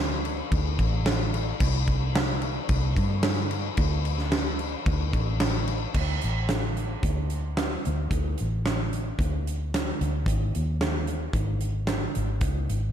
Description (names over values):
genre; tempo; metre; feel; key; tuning
rock, shoegaze and dream pop; 111 BPM; 4/4; straight; unclear; A4 = 441 Hz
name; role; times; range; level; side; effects
vintage muted fingered electric bass; bass; 0.0-12.9 s; G#1 to G2; -27 LUFS; equal; none
big rock drum kit; drums; 0.2-12.8 s; crash cymbal, hi-hat, kick drum, snare drum; -27 LUFS; equal; none
room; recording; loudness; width
light reverb; none; -24 LUFS; side -9 dB against mid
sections
0.0-5.9 A section; 5.9-12.9 B section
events
none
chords
none